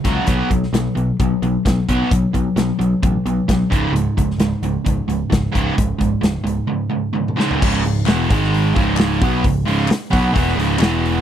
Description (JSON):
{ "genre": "classic rock", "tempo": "131 BPM", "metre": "4/4", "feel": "straight", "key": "C# minor", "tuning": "A4 = 440 Hz", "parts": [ { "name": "overdriven electric guitar", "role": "riff", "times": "0.0-11.2 s", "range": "C#2 to B3", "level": "-18 LUFS", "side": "right 1 dB", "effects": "none" }, { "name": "big rock drum kit", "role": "drums", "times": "0.0-11.1 s", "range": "crash cymbal, hi-hat, kick drum, snare drum, toms", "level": "-20 LUFS", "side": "equal", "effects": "none" }, { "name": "picked electric bass", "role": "bass", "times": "0.1-11.2 s", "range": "C#1 to C#2", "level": "-21 LUFS", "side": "equal", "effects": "none" }, { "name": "group handclap", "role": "percussion", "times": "8.1-10.9 s", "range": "none", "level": "-28 LUFS", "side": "left 18 dB", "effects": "none" } ], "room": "little or no reverb", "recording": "dry, close 1970s-style studio recording", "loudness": "-15 LUFS", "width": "side -10 dB against mid", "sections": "0.0-7.6 A section; 7.6-11.2 B section", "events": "drum fill 7.1-7.6", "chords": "0.3 B5; 3.7 C#5; 7.6 C#m; 8.3 G#5; 8.7 C#m", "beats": "| 0.27 0.73 1.19 1.65 | 2.10 2.56 3.02 3.48 | 3.94 4.40 4.86 5.31 | 5.77 6.23 6.69 7.14 | 7.60 8.06 8.52 8.97 | 9.43 9.88 10.34 10.80" }